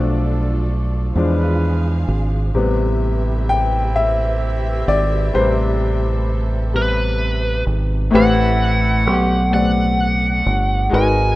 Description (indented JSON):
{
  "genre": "slow six-eight R&B",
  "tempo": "43 BPM (dotted quarters)",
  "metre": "6/8",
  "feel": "straight",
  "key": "unclear",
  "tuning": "A4 = 440 Hz",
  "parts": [
    { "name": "clear baby grand piano", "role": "accompaniment", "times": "0.0-11.4 s", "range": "A2 to G5", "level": "-20 LUFS", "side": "left 3 dB", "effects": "none" },
    { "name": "warm studio string section", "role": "sustained chords", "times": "0.0-8.1 s", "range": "F3 to F5", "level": "-32 LUFS", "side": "right 1 dB", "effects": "none" },
    { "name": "warm horn section", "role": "stabs", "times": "0.0-9.4 s", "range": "E3 to B4", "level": "-29 LUFS", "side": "right 2 dB", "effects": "none" },
    { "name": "deep dub fingered electric bass", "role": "bass", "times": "0.0-11.4 s", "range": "G1 to E2", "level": "-18 LUFS", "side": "right 1 dB", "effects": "none" },
    { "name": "biting lead guitar", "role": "melody", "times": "6.8-11.4 s", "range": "B4 to G#5", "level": "-20 LUFS", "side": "right 1 dB", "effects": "overdrive" }
  ],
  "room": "light reverb, small room ambience",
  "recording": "rough home demo mix",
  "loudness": "-15 LUFS",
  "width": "side -17 dB against mid",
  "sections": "0.0-8.1 A section; 8.1-11.4 B section",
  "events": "grand piano solo 0.0-8.1",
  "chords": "0.0 Bm7b5; 1.1 E7b9; 2.5 Am9"
}